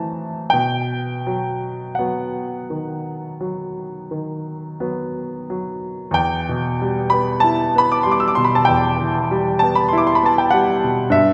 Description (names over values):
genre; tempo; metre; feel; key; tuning
classical, romantic nocturne for solo piano; 41-49 BPM; 4/4; rubato; E minor; A4 = 439 Hz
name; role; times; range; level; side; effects
clear grand piano; solo; 0.0-11.3 s; E2 to E6; -20 LUFS; equal; none
room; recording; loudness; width
wet concert hall reverb, RT60 2.1 s; none; -20 LUFS; mono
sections
0.0-6.2 A section; 6.2-11.3 B section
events
none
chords
0.0 F#m7b5/A; 0.5 B; 6.2 Em